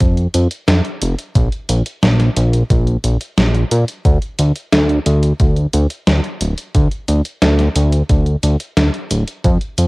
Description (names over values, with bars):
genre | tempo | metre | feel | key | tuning
synthwave | 89 BPM | 4/4 | straight | D minor | A4 = 442 Hz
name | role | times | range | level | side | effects
fat analog bass | bass | 0.0-9.9 s | D1 to Bb2 | -13 LUFS | equal | none
detuned 8-bit digital drum machine | drums | 0.0-9.9 s | hi-hat, snare drum | -18 LUFS | equal | none
electronic kick drum | drums | 0.0-9.6 s | none | -14 LUFS | equal | none
room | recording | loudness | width
little or no reverb | home recording on cassette | -13 LUFS | side -24 dB against mid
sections
0.0-9.9 A section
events
none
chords
none